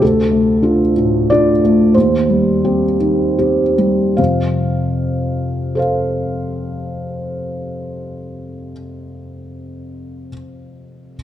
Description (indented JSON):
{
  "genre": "neoclassical minimalist piano",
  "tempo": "71-101 BPM",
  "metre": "3/4",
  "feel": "rubato",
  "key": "F mixolydian",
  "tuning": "A4 = 440 Hz",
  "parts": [
    { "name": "felt-muted upright piano", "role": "solo", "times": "0.0-11.2 s", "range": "D2 to F5", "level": "-15 LUFS", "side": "equal", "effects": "none" }
  ],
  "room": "moderate scoring stage reverb, RT60 1.8 s",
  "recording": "dark, warm production",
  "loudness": "-13 LUFS",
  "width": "side -11 dB against mid",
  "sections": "0.0-4.2 A section; 4.2-8.9 B section",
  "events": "slowing down 0.0-4.2",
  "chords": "0.0 Dm; 1.9 Cm/Eb; 4.2 F"
}